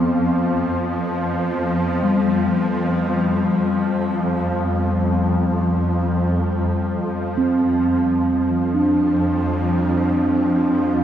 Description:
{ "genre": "world meditative, free-time meditation music", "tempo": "free time", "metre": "none", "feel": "none", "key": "unclear", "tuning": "A4 = 440 Hz", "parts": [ { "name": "swarming drone", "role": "drone", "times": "0.0-11.0 s", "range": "F2 to F3", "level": "-20 LUFS", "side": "equal", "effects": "built-in reverb" }, { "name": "bronze singing bowl", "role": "texture", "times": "0.0-11.0 s", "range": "G3 to D4", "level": "-20 LUFS", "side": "equal", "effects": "shimmer reverb" } ], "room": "wet recital hall reverb, RT60 1.5 s", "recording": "dark, warm production", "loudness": "-17 LUFS", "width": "side -10 dB against mid", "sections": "0.0-8.0 A section; 8.0-11.0 A section", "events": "none", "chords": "none", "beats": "free time" }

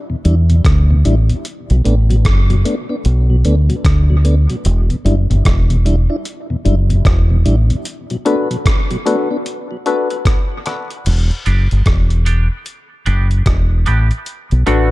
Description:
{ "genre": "dub reggae", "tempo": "75 BPM", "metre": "4/4", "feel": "swing 62% on 16ths", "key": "E minor", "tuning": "A4 = 439 Hz", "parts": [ { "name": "mellow tonewheel organ", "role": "accompaniment", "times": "0.1-11.0 s", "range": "E2 to E4", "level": "-21 LUFS", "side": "left 1 dB", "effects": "slow rotary speaker, high-pass filter, dub echo" }, { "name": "dusty soul sampler-style drum kit", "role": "drums", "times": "0.2-14.9 s", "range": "crash cymbal, hi-hat, kick drum, rim click", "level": "-18 LUFS", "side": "equal", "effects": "none" }, { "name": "deep dub fingered electric bass", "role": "bass", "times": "0.3-14.9 s", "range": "E1 to E2", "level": "-12 LUFS", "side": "equal", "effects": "none" }, { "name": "percussive organ stab", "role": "stabs", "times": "8.3-14.9 s", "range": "D4 to B4", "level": "-19 LUFS", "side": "left 4 dB", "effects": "chorus, high-pass filter, dub echo" }, { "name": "semi-hollow electric guitar", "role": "accompaniment", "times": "11.5-14.9 s", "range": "A3 to G4", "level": "-24 LUFS", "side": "right 6 dB", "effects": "analog chorus, high-pass filter, dub echo" } ], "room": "digital ambience", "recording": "dark, warm production", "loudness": "-12 LUFS", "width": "side -18 dB against mid", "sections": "0.0-11.1 A section; 11.1-14.9 B section", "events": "break 0.0-11.1; filter sweep 7.9-14.3", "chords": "0.0 Em7; 1.4 Bm7; 4.7 Em7; 7.9 Bm7; 11.1 Em7; 14.3 Bm7", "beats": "0.65 | 1.45 2.25 3.05 3.85 | 4.65 5.45 6.25 7.05 | 7.86 8.66 9.46 10.26 | 11.06 11.86 12.66 13.46 | 14.27" }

